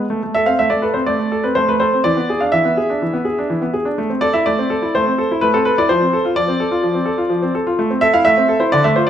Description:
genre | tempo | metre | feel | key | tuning
classical-period piano sonatina | 125 BPM | 4/4 | straight | A minor | A4 = 439 Hz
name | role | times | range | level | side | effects
bright baby grand piano | solo | 0.0-9.1 s | D3 to F5 | -14 LUFS | equal | none
room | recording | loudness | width
wet recital hall reverb, RT60 1.4 s | none | -14 LUFS | side -10 dB against mid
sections
0.1-9.1 A section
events
none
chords
0.1 Am; 2.0 E7; 4.0 Am; 5.9 F; 7.8 Am

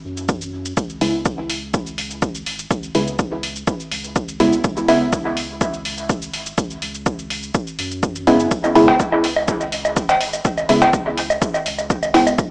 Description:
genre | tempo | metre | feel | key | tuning
dub techno | 124 BPM | 4/4 | straight | C# minor | A4 = 442 Hz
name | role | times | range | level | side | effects
warm sub bass | bass | 0.0-12.5 s | G#1 to F#2 | -33 LUFS | equal | sidechain pumping
electronic cabasa and hi-hat | drums | 0.2-12.5 s | none | -27 LUFS | equal | overdrive
electronic kick drum | drums | 0.3-12.5 s | none | -22 LUFS | equal | overdrive
filtered dub chord stab | stabs | 1.0-5.0, 8.3-12.3 s | C#3 to E4 | -17 LUFS | equal | chorus, phaser, sidechain pumping, dub echo
woodblock and cowbell | percussion | 8.6-12.4 s | none | -18 LUFS | equal | overdrive, sidechain pumping on perc, dub echo
room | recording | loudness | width
wet plate reverb, RT60 0.9 s, digital ambience | dreamy mix soaked in reverb, AM radio sound | -17 LUFS | side -25 dB against mid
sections
0.0-12.5 A section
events
filter sweep on synth stab 0.0-12.5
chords
0.0 C#5

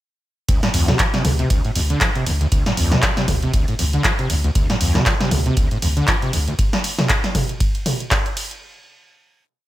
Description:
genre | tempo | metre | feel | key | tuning
acid house | 118 BPM | 4/4 | swing 57% on 16ths | D minor | A4 = 437 Hz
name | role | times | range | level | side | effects
overdriven acid bass | riff | 0.5-6.5 s | C2 to F3 | -22 LUFS | equal | distortion, tube saturation, ensemble chorus, cassette tape, sidechain pumping, digital delay
electronic kick drum | drums | 0.5-8.2 s | none | -20 LUFS | equal | none
punchy analog drum machine | drums | 0.5-8.6 s | handclaps, hi-hat, ride cymbal, snare drum, toms | -20 LUFS | equal | none
warm sub bass | bass | 0.7-6.5 s | D2 | -21 LUFS | equal | sidechain pumping
room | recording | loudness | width
light reverb | bright 1980s-style digital production | -16 LUFS | side -15 dB against mid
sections
0.5-8.6 drop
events
drop 0.5-8.6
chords
0.5 D5

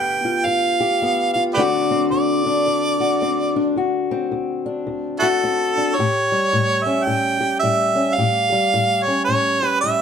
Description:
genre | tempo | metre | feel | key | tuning
acoustic country blues, solo or duo | 109 BPM | 4/4 | swing 60% on 8ths | D mixolydian | A4 = 440 Hz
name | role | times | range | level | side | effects
clear harmonica | melody | 0.0-10.0 s | E4 to G5 | -18 LUFS | right 2 dB | plate reverb
fingerpicked old ladder-braced acoustic guitar | accompaniment | 0.0-10.0 s | D2 to G4 | -20 LUFS | left 3 dB | none
room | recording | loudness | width
moderate studio reverb, RT60 0.8 s | dark, warm production | -17 LUFS | side -7 dB against mid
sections
0.0-10.0 A section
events
none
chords
0.0 G7; 1.6 D7; 6.0 A7

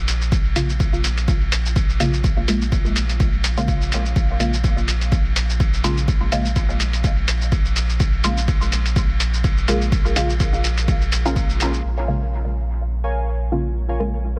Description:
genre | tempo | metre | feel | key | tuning
dub techno | 125 BPM | 4/4 | swing 56% on 16ths | Bb minor | A4 = 440 Hz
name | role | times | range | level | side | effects
soft dub sub bass | bass | 0.0-14.4 s | Bb1 | -24 LUFS | equal | tube saturation, sidechain pumping
lo-fi sampler-style drum kit | drums | 0.1-11.8 s | hi-hat, ride cymbal, shaker | -28 LUFS | equal | low-pass filter on perc, low-pass filter on hats, low-pass filter on cymbals
electronic kick drum | drums | 0.3-11.5 s | none | -22 LUFS | equal | overdrive
filtered dub chord stab | stabs | 0.6-14.2 s | Db3 to F4 | -28 LUFS | equal | phaser, sidechain pumping, dub echo
warbly lo-fi synth keys | riff | 12.0-14.0 s | Bb4 to Ab5 | -33 LUFS | equal | chorus, vintage 12-bit sampler grit, sidechain pumping, dub echo
room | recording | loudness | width
digital ambience | none | -20 LUFS | mono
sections
0.0-11.8 A section; 11.8-14.4 B section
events
filter sweep on synth stab 0.0-11.8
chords
0.0 Bbm7

